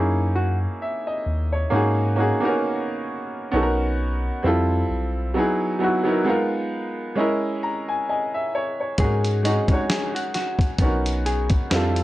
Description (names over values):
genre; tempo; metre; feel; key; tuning
lo-fi hip hop; 66 BPM; 4/4; swing 56% on 16ths; unclear; A4 = 440 Hz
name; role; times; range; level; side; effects
clear upright piano; accompaniment; 0.0-12.0 s; F#3 to A#5; -22 LUFS; right 1 dB; low-pass filter
mellow tine electric piano; bass; 0.0-12.0 s; B1 to G#2; -23 LUFS; equal; medium stereo tremolo, transformer saturation
vintage hollow-body jazz guitar; melody; 0.4-0.6, 9.0-11.5 s; D#4 to G#4; -29 LUFS; left 2 dB; low-pass filter
dusty soul sampler-style drum kit; drums; 9.0-12.0 s; hi-hat, kick drum, snare drum; -23 LUFS; equal; vintage 12-bit sampler grit
room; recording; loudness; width
little or no reverb; dry, gritty hardware recording; -20 LUFS; side -16 dB against mid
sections
0.0-12.0 A section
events
upright piano fill 7.2-9.0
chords
0.0 F#13; 1.7 G#9sus4; 3.5 Bmaj9; 4.4 Fmaj9; 5.4 Emaj9; 6.3 G#m69; 7.2 C#m69/G#; 9.0 G#9sus4; 10.8 Bmaj9